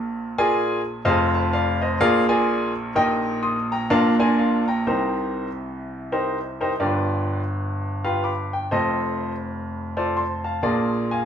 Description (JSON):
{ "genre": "gospel", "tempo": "125 BPM", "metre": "4/4", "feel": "swing 60% on 8ths", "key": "unclear", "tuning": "A4 = 440 Hz", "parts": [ { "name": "clear baby grand piano", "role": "solo", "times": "0.0-11.3 s", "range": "F1 to Eb6", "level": "-20 LUFS", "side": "equal", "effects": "none" } ], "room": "wet large studio reverb, RT60 0.9 s", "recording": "band playing live in one room, nothing above 10.9 kHz", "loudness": "-20 LUFS", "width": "side -8 dB against mid", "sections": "0.0-4.9 A section; 4.9-11.3 B section", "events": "none", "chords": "0.0 Bb7; 1.0 F7; 2.0 Bb7; 3.0 Eb/Bb; 3.9 Bb; 4.9 Cm7; 6.8 G7; 8.7 F7; 10.6 Bb7" }